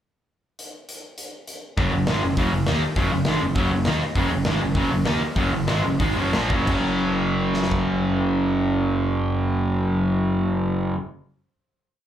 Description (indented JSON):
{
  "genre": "punk rock",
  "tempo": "173-203 BPM",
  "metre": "4/4",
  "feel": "straight",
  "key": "F# major",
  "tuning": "A4 = 440 Hz",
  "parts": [
    { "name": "big rock drum kit", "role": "drums", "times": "0.6-7.8 s", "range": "crash cymbal, hi-hat, kick drum, snare drum", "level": "-27 LUFS", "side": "equal", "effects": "none" },
    { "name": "cranked stack guitar", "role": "riff", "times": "1.8-11.0 s", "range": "F#2 to D#4", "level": "-28 LUFS", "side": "left 11 dB", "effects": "overdrive, slapback echo" },
    { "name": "distorted electric guitar", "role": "riff", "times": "1.8-11.0 s", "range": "F#2 to D#4", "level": "-23 LUFS", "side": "right 3 dB", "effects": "distortion, slapback echo" },
    { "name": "fuzz picked electric bass", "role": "bass", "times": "1.8-10.9 s", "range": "F#1 to D#2", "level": "-26 LUFS", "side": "equal", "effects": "overdrive" }
  ],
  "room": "little or no reverb",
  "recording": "live gig heard through the venue's PA, club reverb",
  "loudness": "-20 LUFS",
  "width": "side -10 dB against mid",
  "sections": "0.6-1.8 pickup bar; 1.8-6.7 riff; 6.7-9.4 final chord",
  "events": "slowing down 4.2-6.7",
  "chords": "0.6 N.C.; 1.8 F#; 6.7 F#5"
}